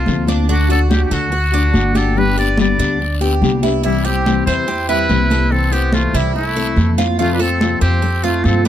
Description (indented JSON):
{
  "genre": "latin, Cuban son and guajira",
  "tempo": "143 BPM",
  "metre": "4/4",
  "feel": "straight",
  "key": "C major",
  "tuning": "A4 = 439 Hz",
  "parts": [
    { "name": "trumpet with metal mute", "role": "melody", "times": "0.0-8.7 s", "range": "E4 to D5", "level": "-21 LUFS", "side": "right 1 dB", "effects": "none" },
    { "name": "nylon-string guitar", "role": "accompaniment", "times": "0.0-8.7 s", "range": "C3 to G4", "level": "-20 LUFS", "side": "left 8 dB", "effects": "none" },
    { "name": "Cuban tres", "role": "arpeggios", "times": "0.0-8.7 s", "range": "D4 to C5", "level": "-23 LUFS", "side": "right 7 dB", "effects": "none" },
    { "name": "upright bass", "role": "bass", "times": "0.0-8.7 s", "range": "G1 to G2", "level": "-17 LUFS", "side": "equal", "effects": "none" },
    { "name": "congas", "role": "percussion", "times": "0.1-8.7 s", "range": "none", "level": "-22 LUFS", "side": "right 1 dB", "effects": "none" },
    { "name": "guiro", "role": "percussion", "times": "0.1-8.7 s", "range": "none", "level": "-30 LUFS", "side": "left 5 dB", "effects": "none" },
    { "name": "warm trumpet", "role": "second line", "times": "3.8-8.7 s", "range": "G3 to E4", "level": "-27 LUFS", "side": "left 2 dB", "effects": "none" }
  ],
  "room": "little or no reverb",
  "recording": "close, detailed microphones",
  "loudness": "-13 LUFS",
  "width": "side -11 dB against mid",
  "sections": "0.0-8.7 A section",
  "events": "none",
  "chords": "0.5 D; 2.2 G; 3.8 C; 5.5 Am/C; 7.2 F"
}